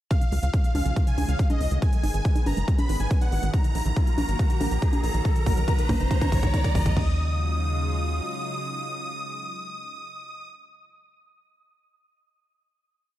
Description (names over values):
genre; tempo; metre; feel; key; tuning
uplifting trance; 140 BPM; 4/4; straight; Eb minor; A4 = 441 Hz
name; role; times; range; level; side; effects
dense compressed supersaw; melody; 0.1-10.5 s; Eb5 to Eb6; -32 LUFS; equal; sidechain pumping, dub echo
lush unison pad; sustained chords; 0.4-10.5 s; C#3 to Cb5; -35 LUFS; left 1 dB; chorus, phaser, sidechain pumping
wide unison pluck; arpeggios; 0.1-7.2 s; Db3 to Ab4; -34 LUFS; right 3 dB; sidechain pumping
big-room dance drum kit; drums; 0.1-7.1 s; congas, crash cymbal, hi-hat; -34 LUFS; left 1 dB; sidechain pumping on hats, sidechain pumping on perc, sidechain pumping on cymbals
electronic kick drum; drums; 0.1-7.1 s; none; -22 LUFS; equal; none
riser; sound effects; 1.8-7.0 s; none; -37 LUFS; equal; none
tight sequencer bass; bass; 0.3-8.2 s; Gb1 to Eb2; -25 LUFS; equal; sidechain pumping
room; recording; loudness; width
little or no reverb; dark, warm production; -22 LUFS; side -14 dB against mid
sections
0.1-7.0 build; 7.0-10.4 final chord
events
build-up 0.1-7.0; filter sweep on synth arpeggio sound 0.1-7.0; riser 1.8-7.0; drum fill 3.5-7.0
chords
0.1 Dbadd9; 1.8 Abm; 3.5 Ebm; 5.2 Badd9; 7.0 Ebm11